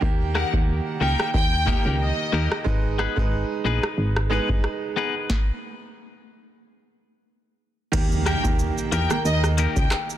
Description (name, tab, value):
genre	dancehall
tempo	91 BPM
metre	4/4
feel	swing 56% on 16ths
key	G# harmonic minor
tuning	A4 = 440 Hz
part	bright grand piano	accompaniment	0.0-10.2 s	D#3 to B4	-29 LUFS	right 6 dB	none
part	solid FM bass	bass	0.0-9.9 s	G1 to E2	-24 LUFS	equal	none
part	booming analog drum machine	drums	0.0-10.2 s	crash cymbal, handclaps, hi-hat, kick drum, rim click, shaker, snare drum	-24 LUFS	equal	none
part	clean electric guitar	arpeggios	0.3-9.8 s	A#3 to B4	-29 LUFS	left 8 dB	spring reverb
part	warm studio violin section	melody	0.4-2.5, 8.3-9.9 s	D#5 to G5	-28 LUFS	left 1 dB	digital delay
part	impact	sound effects	8.1-10.2 s	none	-34 LUFS	equal	none
room	digital ambience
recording	dense, heavily limited modern master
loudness	-20 LUFS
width	side -12 dB against mid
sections	0.0-7.9 A section; 7.9-10.2 B section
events	stop 5.3-7.9; impact 7.9-10.2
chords	0.0 D#; 2.7 G#m; 7.9 D#